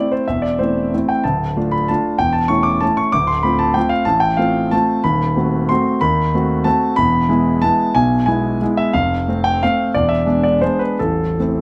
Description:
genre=classical, piano waltz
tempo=148-204 BPM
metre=3/4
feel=rubato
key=A minor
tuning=A4 = 439 Hz
part: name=clear concert grand piano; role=solo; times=0.0-11.6 s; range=A0 to D6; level=-17 LUFS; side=equal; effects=none
room=light reverb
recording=close, detailed microphones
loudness=-17 LUFS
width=mono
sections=0.0-11.6 A section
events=none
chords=0.0 Am; 1.3 Dm; 2.2 A/E; 3.1 Dm7; 5.0 D#dim7; 7.0 E; 8.9 F; 9.9 E7; 11.0 Am

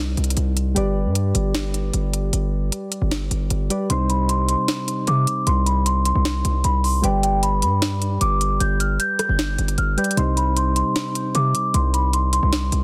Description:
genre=hip hop, trap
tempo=153 BPM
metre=4/4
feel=half-time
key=C harmonic minor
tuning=A4 = 440 Hz
part: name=soft electric-piano-like synth keys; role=accompaniment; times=0.0-12.8 s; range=C3 to D5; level=-29 LUFS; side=equal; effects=chorus, low-pass filter
part: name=distorted 808-style bass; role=bass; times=0.0-12.8 s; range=G1 to C3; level=-23 LUFS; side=equal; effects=distortion
part: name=trap drum kit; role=drums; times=0.2-12.8 s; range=hi-hat, rim click, snare drum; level=-28 LUFS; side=equal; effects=none
part: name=large celesta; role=melody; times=3.9-12.8 s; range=G5 to G6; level=-25 LUFS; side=equal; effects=low-pass filter
room=little or no reverb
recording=dense, heavily limited modern master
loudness=-21 LUFS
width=mono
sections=0.0-3.9 A section; 3.9-12.8 B section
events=break 0.0-3.9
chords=0.0 Cm; 0.8 G; 3.9 Cm; 7.0 G; 10.2 Cm

